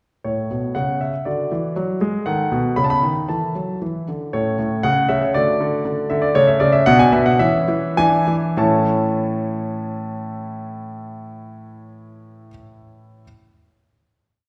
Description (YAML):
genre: classical-period piano sonatina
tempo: 97-120 BPM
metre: 2/4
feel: straight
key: A major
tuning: A4 = 440 Hz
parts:
  - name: warm concert grand piano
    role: solo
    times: 0.2-13.2 s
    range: A2 to B5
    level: -20 LUFS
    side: equal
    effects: none
room: wet recital hall reverb, RT60 1.6 s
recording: heard from further back in the room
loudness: -19 LUFS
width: mono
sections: 0.3-4.3 A section; 4.3-8.6 A section; 8.6-11.0 final chord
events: slowing down 5.9-8.6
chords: 0.3 A; 0.8 N.C.; 1.3 D; 2.3 B7; 3.3 A5/E; 3.8 Dsus2; 4.3 A; 4.8 C#5; 5.4 D; 6.4 A/C#; 6.9 Bm; 7.4 C#m/E; 8.0 E7; 8.6 A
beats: | 0.25 0.76 | 1.26 1.76 | 2.27 2.77 | 3.30 3.82 | 4.34 4.85 | 5.36 5.86 | 6.36 6.87 | 7.40 7.97 | 8.59 9.20 | 9.81 10.42